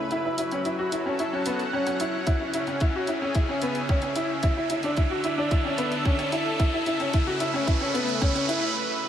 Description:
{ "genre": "piano and strings electronica", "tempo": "111 BPM", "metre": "4/4", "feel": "straight", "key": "A major", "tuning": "A4 = 440 Hz", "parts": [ { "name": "lush unison pad", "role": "sustained chords", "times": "0.0-9.1 s", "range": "C#3 to F#5", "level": "-30 LUFS", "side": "right 1 dB", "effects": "chorus, sidechain pumping" }, { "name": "warm sub bass", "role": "bass", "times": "0.0-8.7 s", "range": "F#1 to D2", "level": "-57 LUFS", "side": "right 1 dB", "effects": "none" }, { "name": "riser", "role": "sound effects", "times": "0.3-8.8 s", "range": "none", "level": "-33 LUFS", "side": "right 2 dB", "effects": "none" }, { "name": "clear grand piano", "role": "riff", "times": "0.1-8.6 s", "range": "B3 to F#4", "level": "-27 LUFS", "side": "left 1 dB", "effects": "digital delay" }, { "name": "electronic hi-hat", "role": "drums", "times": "0.1-8.6 s", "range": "none", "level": "-38 LUFS", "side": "right 1 dB", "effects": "overdrive, studio reverb" }, { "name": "electronic kick drum", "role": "drums", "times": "2.3-8.3 s", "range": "none", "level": "-23 LUFS", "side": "equal", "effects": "studio reverb" } ], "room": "moderate huge ambient reverb, RT60 6.9 s", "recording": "lossy compression artefacts", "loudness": "-23 LUFS", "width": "side -10 dB against mid", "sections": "0.0-9.1 A section", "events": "build-up 0.0-9.1; riser 0.3-8.8; break 8.8-9.1", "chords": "0.1 F#m; 2.3 C#m; 4.4 Dsus2; 6.6 Aadd9/C#" }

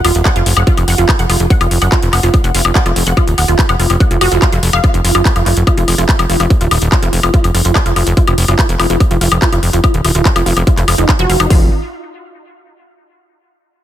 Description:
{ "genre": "psychedelic trance", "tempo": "144 BPM", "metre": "4/4", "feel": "straight", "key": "unclear", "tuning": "A4 = 438 Hz", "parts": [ { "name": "wide unison pluck", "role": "riff", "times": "0.0-11.7 s", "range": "Eb4 to Gb5", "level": "-17 LUFS", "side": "moving between left 2 dB and right 6 dB", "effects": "auto-pan, sidechain pumping, dub echo" }, { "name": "plucky analog bass", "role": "bass", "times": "0.0-11.7 s", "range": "Eb1 to Gb1", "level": "-14 LUFS", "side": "equal", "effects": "none" }, { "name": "techno drum kit", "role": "drums", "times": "0.0-11.5 s", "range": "handclaps, hi-hat, woodblock", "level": "-16 LUFS", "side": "left 3 dB", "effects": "none" }, { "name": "techno drum kit", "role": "drums", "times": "0.3-11.6 s", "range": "hi-hat, kick drum", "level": "-12 LUFS", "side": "equal", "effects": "distortion" } ], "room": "little or no reverb", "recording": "none", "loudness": "-9 LUFS", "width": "side -11 dB against mid", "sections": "0.0-11.5 A section; 11.5-13.2 B section", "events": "filter sweep on synth arpeggio sound 0.0-11.5", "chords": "0.0 Ebmadd9; 11.5 N.C." }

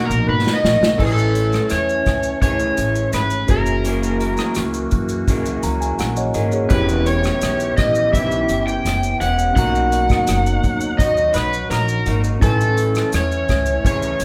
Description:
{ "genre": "indie pop, bedroom pop", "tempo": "84 BPM", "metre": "4/4", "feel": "straight", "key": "unclear", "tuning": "A4 = 436 Hz", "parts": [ { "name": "overdriven slide guitar", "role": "melody", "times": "0.0-14.2 s", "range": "G#4 to G5", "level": "-22 LUFS", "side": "equal", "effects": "none" }, { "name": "electric guitar through a small old amp", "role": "accompaniment", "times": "0.0-14.2 s", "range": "B2 to G#4", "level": "-28 LUFS", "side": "equal", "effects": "vibrato effect" }, { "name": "mellow tine electric piano", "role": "accompaniment", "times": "0.0-14.2 s", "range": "C#4 to A#5", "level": "-30 LUFS", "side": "equal", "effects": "none" }, { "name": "phased analog pad", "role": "sustained chords", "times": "0.0-14.2 s", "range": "B2 to G4", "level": "-30 LUFS", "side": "equal", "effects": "phaser, chorus" }, { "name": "upright bass", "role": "bass", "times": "0.1-14.2 s", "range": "E1 to F#2", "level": "-24 LUFS", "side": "equal", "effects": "none" }, { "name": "unplugged drum kit", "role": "drums", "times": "0.1-14.2 s", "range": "crash cymbal, hi-hat, kick drum, rim click, shaker, snare drum", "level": "-24 LUFS", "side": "equal", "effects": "none" } ], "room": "moderate large studio reverb, RT60 1.0 s", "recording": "band playing live in one room", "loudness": "-18 LUFS", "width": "mono", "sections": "1.0-14.2 A section", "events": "drum fill 0.3-1.0; tine electric piano fill 5.3-6.7", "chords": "0.0 Bmaj7; 1.0 Amaj7; 3.5 F#add9; 6.7 Em6; 9.6 Bmaj7; 12.4 Amaj7" }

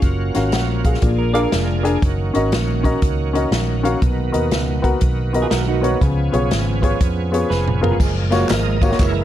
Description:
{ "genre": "uptempo gospel", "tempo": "120 BPM", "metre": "4/4", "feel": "swing 65% on 8ths", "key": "F# major", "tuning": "A4 = 441 Hz", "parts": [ { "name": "bright tonewheel organ", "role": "sustained chords", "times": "0.0-9.2 s", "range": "D#3 to D#5", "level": "-25 LUFS", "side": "right 4 dB", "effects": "slow rotary speaker, overdrive, chorus vibrato" }, { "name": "fingered electric bass", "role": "bass", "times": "0.0-9.2 s", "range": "E#1 to E#2", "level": "-21 LUFS", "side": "equal", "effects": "none" }, { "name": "swinging big-band drum kit", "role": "drums", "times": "0.0-9.1 s", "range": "crash cymbal, hi-hat, kick drum, ride cymbal, snare drum, toms", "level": "-20 LUFS", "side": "equal", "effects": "none" }, { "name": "dark baby grand piano", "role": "accompaniment", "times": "0.3-9.0 s", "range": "A#2 to G#5", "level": "-21 LUFS", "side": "left 2 dB", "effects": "none" }, { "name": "semi-hollow electric guitar", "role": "second line", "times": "1.2-2.0, 5.4-8.2 s", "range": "D#4 to D5", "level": "-25 LUFS", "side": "right 9 dB", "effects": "none" }, { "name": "tambourine and handclaps", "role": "percussion", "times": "8.0-9.1 s", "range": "none", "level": "-33 LUFS", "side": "left 4 dB", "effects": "none" } ], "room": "light reverb, small room ambience", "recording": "dark, warm production", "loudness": "-16 LUFS", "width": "side -12 dB against mid", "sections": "0.0-8.0 A section; 8.0-9.2 B section", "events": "drum fill 7.5-8.0; tonewheel organ solo 8.0-9.2", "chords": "0.0 F#maj7; 1.0 A#7; 2.0 D#m7/F#; 4.0 Bmaj7; 6.0 C#7; 8.0 F#maj7" }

